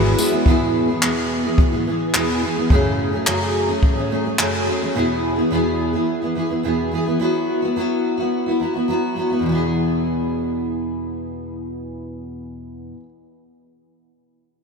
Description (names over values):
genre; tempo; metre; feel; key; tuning
acoustic pop; 107 BPM; 4/4; straight; E major; A4 = 440 Hz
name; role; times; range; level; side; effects
fingerpicked steel-string acoustic guitar; accompaniment; 0.0-13.1 s; E2 to G#4; -19 LUFS; equal; double-tracked left and right
jazz brush drum kit; drums; 0.2-4.5 s; handclaps, kick drum, tambourine; -20 LUFS; equal; none
room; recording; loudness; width
moderate huge ambient reverb, RT60 4.3 s; dreamy mix soaked in reverb; -17 LUFS; side -5 dB against mid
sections
0.5-9.4 A section; 9.4-11.7 B section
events
none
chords
0.5 E; 2.7 F#madd9; 4.9 E; 7.2 Bsus4/F#; 9.4 E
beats
| 0.46 1.02 1.58 2.14 | 2.70 3.26 3.82 4.39 | 4.95 5.51 6.07 6.63 | 7.20 7.76 8.32 8.88 | 9.44 10.01 10.57 11.13